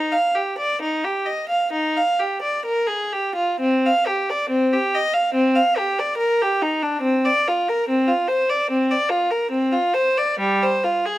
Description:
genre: classical, baroque-style suite movement for unaccompanied violin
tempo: 60-72 BPM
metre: 4/4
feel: rubato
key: Eb major, C minor from 3.6 s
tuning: A4 = 440 Hz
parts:
  - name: rich violin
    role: solo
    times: 0.0-11.2 s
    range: G3 to F5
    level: -18 LUFS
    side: equal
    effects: none
room: light reverb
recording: none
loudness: -18 LUFS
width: side -15 dB against mid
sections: 0.0-3.6 A section; 3.6-11.2 A section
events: none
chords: none

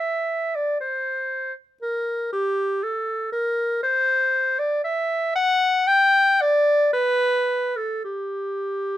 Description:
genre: classical, baroque-style fantasia for unaccompanied clarinet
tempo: 52-60 BPM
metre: 4/4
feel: rubato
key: G major from 3.8 s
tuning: A4 = 440 Hz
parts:
  - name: clear clarinet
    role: solo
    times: 0.0-9.0 s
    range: G4 to G5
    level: -20 LUFS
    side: equal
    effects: none
room: light reverb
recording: minimal, uncompressed stereo recording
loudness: -20 LUFS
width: side -13 dB against mid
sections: 0.0-9.0 A section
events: none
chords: none

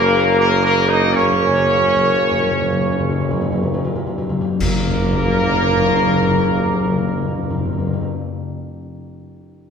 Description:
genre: classical, ceremonial fanfare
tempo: 60-86 BPM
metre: 4/4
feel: straight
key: F# major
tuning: A4 = 440 Hz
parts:
  - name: mellow trumpet section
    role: melody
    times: 0.0-8.1 s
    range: A#4 to D#5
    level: -22 LUFS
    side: equal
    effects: none
  - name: clear trombone section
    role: sustained chords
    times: 0.0-8.1 s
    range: A#3 to D#4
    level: -22 LUFS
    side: right 3 dB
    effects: none
  - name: mellow French horn section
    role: sustained chords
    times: 0.0-8.1 s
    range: C#3 to A#3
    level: -22 LUFS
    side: left 4 dB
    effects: none
  - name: dark tuba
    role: bass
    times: 0.0-8.1 s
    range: F#1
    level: -21 LUFS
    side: right 4 dB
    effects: none
  - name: timpani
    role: percussion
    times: 1.1-8.1 s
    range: F#2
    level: -21 LUFS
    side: left 2 dB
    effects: none
  - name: clash cymbals and concert bass drum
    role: percussion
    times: 4.6-6.5 s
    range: none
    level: -25 LUFS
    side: equal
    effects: none
room: wet scoring stage reverb, RT60 1.7 s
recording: minimal, uncompressed stereo recording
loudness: -15 LUFS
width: side -6 dB against mid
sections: 0.0-4.6 A section; 4.6-8.6 B section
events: slowing down 0.0-4.6; timpani fill 1.1-4.6; band accent 4.6-5.6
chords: 0.0 F#

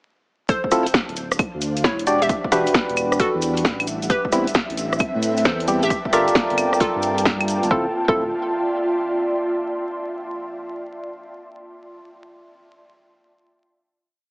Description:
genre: UK garage, two-step garage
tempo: 133 BPM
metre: 4/4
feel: swing 67% on 16ths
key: D dorian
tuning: A4 = 441 Hz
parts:
  - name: hollow square pluck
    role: melody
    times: 0.5-8.2 s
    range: E4 to E5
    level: -24 LUFS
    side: equal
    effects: chorus, digital delay
  - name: electronic kick drum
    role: drums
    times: 0.5-8.1 s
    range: none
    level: -25 LUFS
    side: equal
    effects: overdrive, small room ambience
  - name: punchy analog drum machine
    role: drums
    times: 0.5-7.7 s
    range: claves, hi-hat, rim click, snare drum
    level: -21 LUFS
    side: equal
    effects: overdrive, small room ambience
  - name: cabasa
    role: percussion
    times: 0.5-7.7 s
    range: none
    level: -34 LUFS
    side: equal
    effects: none
  - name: ethereal airy pad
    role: texture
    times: 1.2-9.5 s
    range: G3 to C6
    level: -26 LUFS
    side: equal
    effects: ensemble chorus, built-in reverb, sidechain pumping
  - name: percussive organ stab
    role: stabs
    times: 0.7-8.2 s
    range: G3 to D5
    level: -21 LUFS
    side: equal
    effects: chorus, cassette tape, digital delay
  - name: dark detuned saw bass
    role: bass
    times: 0.7-8.3 s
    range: D1 to A2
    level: -27 LUFS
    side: equal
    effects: none
  - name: airy breathy pad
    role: sustained chords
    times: 4.5-7.7 s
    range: E5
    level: -31 LUFS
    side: right 1 dB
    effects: chorus, sidechain pumping
room: moderate plate reverb, RT60 1.0 s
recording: heavily compressed radio sound, multiband compression, vinyl crackle, small speaker sound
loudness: -18 LUFS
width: side -28 dB against mid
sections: 0.5-7.7 drop; 7.7-9.5 final chord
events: drop 0.5-7.7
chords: 0.5 Dm9; 2.1 Em9; 3.9 Am9; 5.9 Gm9; 7.7 Dm9

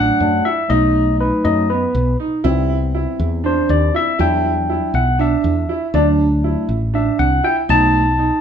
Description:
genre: progressive instrumental, progressive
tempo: 240 BPM (eighths)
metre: 7/8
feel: straight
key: E minor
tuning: A4 = 441 Hz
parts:
  - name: barky tine electric piano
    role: accompaniment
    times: 0.0-8.4 s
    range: F#3 to A5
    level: -18 LUFS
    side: left 3 dB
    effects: none
  - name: warm baby grand piano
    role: arpeggios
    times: 0.0-8.4 s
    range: B3 to E4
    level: -20 LUFS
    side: right 7 dB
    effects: digital delay
  - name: woody fretless electric bass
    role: bass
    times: 0.0-8.3 s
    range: A1 to F#2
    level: -19 LUFS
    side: equal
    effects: none
room: wet large studio reverb, RT60 0.9 s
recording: band playing live in one room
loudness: -14 LUFS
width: side -8 dB against mid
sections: 0.0-8.4 A section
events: tine electric piano solo 0.0-8.4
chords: 0.0 D; 0.7 B7; 2.4 Cmaj9; 4.2 Em7; 5.9 D; 7.7 B7

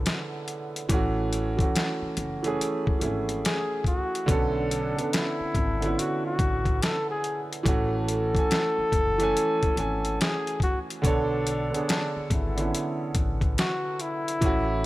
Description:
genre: lo-fi hip hop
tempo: 71 BPM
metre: 4/4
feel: swing 64% on 16ths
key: B dorian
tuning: A4 = 442 Hz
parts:
  - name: warm upright piano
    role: accompaniment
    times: 0.0-14.9 s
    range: D3 to G#5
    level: -28 LUFS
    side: right 2 dB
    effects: cassette tape
  - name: boom bap sampler-style drum kit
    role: drums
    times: 0.1-14.7 s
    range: hi-hat, kick drum, snare drum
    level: -27 LUFS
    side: left 1 dB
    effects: none
  - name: upright bass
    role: bass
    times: 0.9-14.9 s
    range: F#1 to B1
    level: -31 LUFS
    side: left 1 dB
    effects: none
  - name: breathy flugelhorn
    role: melody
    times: 3.5-14.9 s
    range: D4 to A4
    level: -29 LUFS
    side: left 1 dB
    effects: slapback echo
room: small room ambience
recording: none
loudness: -24 LUFS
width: side -17 dB against mid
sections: 0.0-11.0 A section; 11.0-14.9 A section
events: none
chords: 0.0 Bm9; 0.9 F#m7; 4.3 Bm9; 7.7 F#m7; 11.0 Bm9

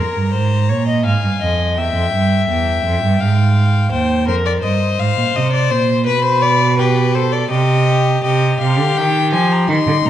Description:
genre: classical, baroque-style fugue for string quartet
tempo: 83 BPM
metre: 3/4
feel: straight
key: F minor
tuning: A4 = 439 Hz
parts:
  - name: warm violin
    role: melody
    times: 0.0-10.1 s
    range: B4 to C6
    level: -20 LUFS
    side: left 7 dB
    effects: none
  - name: dark violin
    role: second line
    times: 0.0-10.1 s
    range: Eb4 to F5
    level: -19 LUFS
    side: left 3 dB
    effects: none
  - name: dark cello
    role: bass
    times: 0.0-10.1 s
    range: Eb2 to F3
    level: -16 LUFS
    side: right 3 dB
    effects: none
room: moderate concert hall reverb, RT60 1.8 s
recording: none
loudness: -13 LUFS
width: side -11 dB against mid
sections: 0.0-8.2 A section; 8.2-10.1 B section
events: none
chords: 0.0 Fm; 1.8 Em; 3.2 Fm/Ab; 3.9 Cm/Eb; 5.4 Cm; 6.1 Bm7; 7.5 Cm

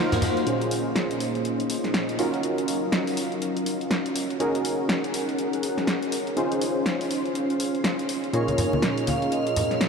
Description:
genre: deep house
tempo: 122 BPM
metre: 4/4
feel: swing 60% on 16ths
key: Bb minor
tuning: A4 = 440 Hz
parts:
  - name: soft string machine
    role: sustained chords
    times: 0.1-9.9 s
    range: Gb3 to C6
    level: -29 LUFS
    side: equal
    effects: ensemble chorus
  - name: warm analog keys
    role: stabs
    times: 0.0-9.9 s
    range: Bb2 to Db5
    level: -26 LUFS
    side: equal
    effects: chorus, low-pass filter, ping-pong delay
  - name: bright symphonic violin section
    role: texture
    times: 0.0-0.5, 8.3-9.9 s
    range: F6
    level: -41 LUFS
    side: right 1 dB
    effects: none
  - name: punchy analog drum machine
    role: drums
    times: 0.1-9.9 s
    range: hi-hat, snare drum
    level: -29 LUFS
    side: equal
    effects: none
  - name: vintage brush drum kit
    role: drums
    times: 0.1-0.5 s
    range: ride cymbal, snare drum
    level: -37 LUFS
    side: left 2 dB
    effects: high-pass filter on cymbals, high-pass filter on snare, high-pass filter on room
  - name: congas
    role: percussion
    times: 0.1-0.3, 8.5-9.7 s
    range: none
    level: -28 LUFS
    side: left 1 dB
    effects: none
  - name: vibraphone with medium hard mallets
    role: melody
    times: 8.3-9.9 s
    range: Bb4 to F5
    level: -28 LUFS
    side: right 5 dB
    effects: analog delay
room: wet huge ambient reverb, RT60 4.0 s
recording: dreamy mix soaked in reverb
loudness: -23 LUFS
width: side -5 dB against mid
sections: 0.5-9.9 A section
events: filter sweep on string machine 0.5-9.9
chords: 0.5 Bbm11; 2.2 Ebm9; 4.4 Ab9sus4; 6.4 Dbmaj7; 8.3 Bbm11

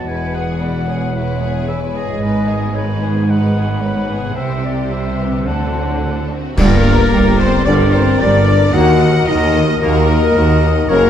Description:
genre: cinematic, heroic adventure film score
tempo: 112 BPM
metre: 4/4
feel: straight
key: G minor from 6.6 s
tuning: A4 = 440 Hz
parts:
  - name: rich studio violin section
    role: melody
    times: 0.0-11.1 s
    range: F#4 to Gb5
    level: -26 LUFS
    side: left 3 dB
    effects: none
  - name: clear oboe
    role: second line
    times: 0.0-11.1 s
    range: C#5 to G#5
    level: -27 LUFS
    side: equal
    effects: none
  - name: clear symphonic violin section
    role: second line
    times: 0.0-11.1 s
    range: B3 to Bb5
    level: -30 LUFS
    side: left 2 dB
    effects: none
  - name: silver concert flute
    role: second line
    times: 0.0-11.1 s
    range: Bb4 to B5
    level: -26 LUFS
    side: left 3 dB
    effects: none
  - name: warm clarinet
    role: second line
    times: 0.0-11.1 s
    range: Bb4 to D#5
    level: -25 LUFS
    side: left 5 dB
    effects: none
  - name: rich symphonic viola section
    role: accompaniment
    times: 0.0-11.1 s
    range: G3 to Bb4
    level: -26 LUFS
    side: right 2 dB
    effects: none
  - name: clear trombone section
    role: sustained chords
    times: 0.0-11.1 s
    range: A2 to Bb3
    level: -26 LUFS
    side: right 1 dB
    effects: none
  - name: dark French horn section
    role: sustained chords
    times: 0.0-11.1 s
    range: Bb3 to Gb4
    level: -21 LUFS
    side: left 4 dB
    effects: none
  - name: concert harp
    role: arpeggios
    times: 0.0-11.1 s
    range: E2 to Bb5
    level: -28 LUFS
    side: left 6 dB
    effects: none
  - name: clear symphonic double bass section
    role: bass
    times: 0.0-11.1 s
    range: E1 to Eb2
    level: -20 LUFS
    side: right 2 dB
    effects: none
  - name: rich symphonic cello section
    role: bass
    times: 0.0-11.1 s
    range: Eb2 to D3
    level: -18 LUFS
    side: right 1 dB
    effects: none
  - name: cymbal swell, clash cymbals and concert bass drum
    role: percussion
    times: 2.2-7.6 s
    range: none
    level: -20 LUFS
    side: equal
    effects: none
  - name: warm trumpet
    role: stabs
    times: 6.6-11.1 s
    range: Bb4 to Gb5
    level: -24 LUFS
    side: equal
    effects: none
  - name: mellow tuba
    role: bass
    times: 6.6-11.1 s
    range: F#1 to Eb2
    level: -20 LUFS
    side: right 2 dB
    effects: none
room: moderate recital hall reverb, RT60 1.6 s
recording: dark, warm production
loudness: -12 LUFS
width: side -9 dB against mid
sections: 0.0-6.6 A section; 6.6-11.1 B section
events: band accent 6.6-7.1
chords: 0.1 E; 2.2 G#m; 4.4 C; 5.5 D7; 6.6 Gm; 8.7 Ebm

